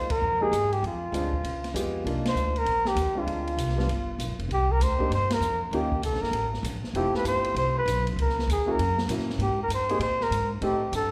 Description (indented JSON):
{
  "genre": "jazz, small-group swing and bop",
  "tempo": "196 BPM",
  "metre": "4/4",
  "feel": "swing 63% on 8ths",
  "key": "C minor",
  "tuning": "A4 = 435 Hz",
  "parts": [
    { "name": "mellow flugelhorn", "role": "melody", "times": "0.0-11.1 s", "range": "F4 to C5", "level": "-30 LUFS", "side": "equal", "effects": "none" },
    { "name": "warm baby grand piano", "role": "accompaniment", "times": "0.0-10.8 s", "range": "G3 to A#4", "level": "-34 LUFS", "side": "equal", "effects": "none" },
    { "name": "upright bass", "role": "bass", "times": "0.0-11.1 s", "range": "F1 to A#2", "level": "-32 LUFS", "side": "equal", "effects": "none" },
    { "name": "open jazz drum kit", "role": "drums", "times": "0.1-11.0 s", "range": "hi-hat, kick drum, ride cymbal, snare drum", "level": "-38 LUFS", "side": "equal", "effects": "none" }
  ],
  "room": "moderate concert hall reverb, RT60 2.2 s",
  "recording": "recorded in a church or concert hall",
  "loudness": "-27 LUFS",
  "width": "mono",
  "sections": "0.0-4.5 A section; 4.5-11.1 B section",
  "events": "band accent 0.1, 2.2, 5.3",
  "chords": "0.0 Db69 (rootless); 0.8 Dm7b5; 1.4 Db7#11; 2.1 Cm11; 3.3 Dm7b5; 3.9 G7; 4.5 C7sus2; 5.7 Eb9; 6.9 Fmaj9; 8.2 Dbm; 8.8 F#7; 9.4 Abmaj9",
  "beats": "0.21 0.52 | 0.83 1.13 1.44 1.74 | 2.05 2.36 2.66 2.97 | 3.27 3.58 3.89 4.19 | 4.50 4.81 5.11 5.42 | 5.72 6.03 6.34 6.64 | 6.95 7.25 7.56 7.87 | 8.17 8.48 8.78 9.09 | 9.39 9.70 10.01 10.31 | 10.62 10.92"
}